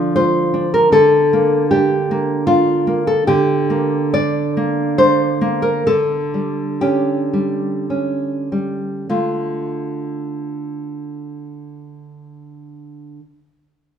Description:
romantic piece for solo classical guitar; 47-79 BPM; 3/4; rubato; D minor; A4 = 440 Hz
nylon-string guitar; solo; 0.0-13.2 s; D3 to D5; -15 LUFS; equal
moderate recital hall reverb, RT60 1.4 s; minimal, uncompressed stereo recording; -15 LUFS; side -8 dB against mid
0.0-9.1 A section; 9.1-12.4 B section
slowing down 2.1-9.1
0.0 Dm; 0.9 Gm/D; 5.9 A7/D; 9.1 Dm
0.14 | 0.91 1.69 2.46 | 3.25 4.12 4.95 | 5.85 6.80 7.88 | 9.09 10.20 11.31

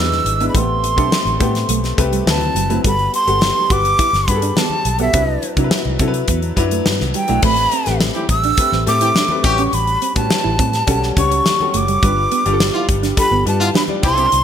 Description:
polished 1980s jazz-funk pop; 104 BPM; 4/4; straight; A dorian; A4 = 441 Hz
breathy jazz flute; melody; 0.0-14.4 s; E5 to E6; -18 LUFS; right 1 dB
clear grand piano; accompaniment; 0.0-14.4 s; B2 to D5; -22 LUFS; left 3 dB; lush chorus
mellow electric guitar; riff; 0.0-14.3 s; F#3 to G4; -25 LUFS; right 9 dB; wide subtle chorus
vintage muted fingered electric bass; bass; 0.0-14.4 s; F#1 to C3; -20 LUFS; equal
modern studio drum kit; drums; 0.1-14.4 s; crash cymbal, hi-hat, kick drum, snare drum; -19 LUFS; left 1 dB; gated reverb
congas; percussion; 0.1-14.4 s; -32 LUFS; left 4 dB
warm horn section; second line; 8.1-14.3 s; D3 to G4; -24 LUFS; left 1 dB
light reverb, small room ambience; bright 1980s-style digital production; -14 LUFS; side -9 dB against mid
0.0-7.4 A section; 7.4-14.4 B section
0.0 E7; 0.5 Am9; 2.3 D13; 2.8 Gmaj9; 5.1 Cmaj9#11; 7.4 Am9; 9.4 A13; 12.0 G7
| 0.54 1.12 1.69 2.27 | 2.84 3.42 3.99 4.57 | 5.14 5.71 6.29 6.86 | 7.43 8.01 8.58 9.16 | 9.73 10.30 10.88 11.45 | 12.03 12.60 13.17 13.75 | 14.32

